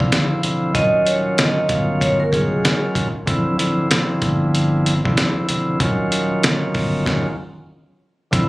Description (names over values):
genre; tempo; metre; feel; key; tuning
hip hop, boom-bap hip-hop; 95 BPM; 4/4; swing 62% on 16ths; unclear; A4 = 440 Hz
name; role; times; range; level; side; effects
vibraphone with medium hard mallets; melody; 0.0-2.8 s; G#4 to F5; -21 LUFS; right 1 dB; none
bright tonewheel organ; accompaniment; 0.0-8.5 s; D3 to F4; -20 LUFS; equal; cassette tape
soft dub sub bass; bass; 0.0-8.5 s; D1 to G1; -24 LUFS; equal; none
dusty soul sampler-style drum kit; drums; 0.0-8.5 s; hi-hat, kick drum, snare drum; -20 LUFS; equal; none
room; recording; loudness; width
light reverb; recorded on a phone in the room, club reverb; -16 LUFS; side -20 dB against mid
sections
0.0-8.3 A section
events
stop 7.1-8.3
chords
0.0 Dm9; 0.7 Ebm9; 3.3 Dm9; 5.8 Ebm9